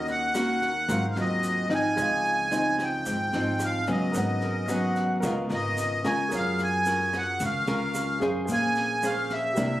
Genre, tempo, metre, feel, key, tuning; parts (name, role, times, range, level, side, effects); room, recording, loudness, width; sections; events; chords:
bossa nova; 110 BPM; 4/4; straight; Ab major; A4 = 440 Hz
accordion; melody; 0.0-9.8 s; Eb5 to Ab5; -27 LUFS; right 1 dB; light tremolo tuning
nylon-string guitar; accompaniment; 0.0-9.8 s; Ab2 to C5; -28 LUFS; equal
warm baby grand piano; accompaniment; 0.0-9.8 s; Gb4 to F6; -36 LUFS; right 1 dB
upright bass; bass; 0.0-9.8 s; Ab1 to Gb2; -34 LUFS; equal
jazz brush drum kit; drums; 0.1-9.7 s; kick drum, rim click, snare drum; -39 LUFS; equal
tube shaker; percussion; 0.1-9.8 s; -42 LUFS; right 1 dB
reedy jazz flute; second line; 4.4-5.4 s; Bb4 to Gb5; -32 LUFS; equal
light reverb; recorded on a phone in the room, club reverb, compression; -24 LUFS; side -14 dB against mid
0.0-9.8 A section
0.0 Ebm7; 0.9 Ab13; 2.0 Dbmaj9; 4.1 Abm11; 5.2 Db13; 6.3 Gbmaj7; 8.5 Bbm9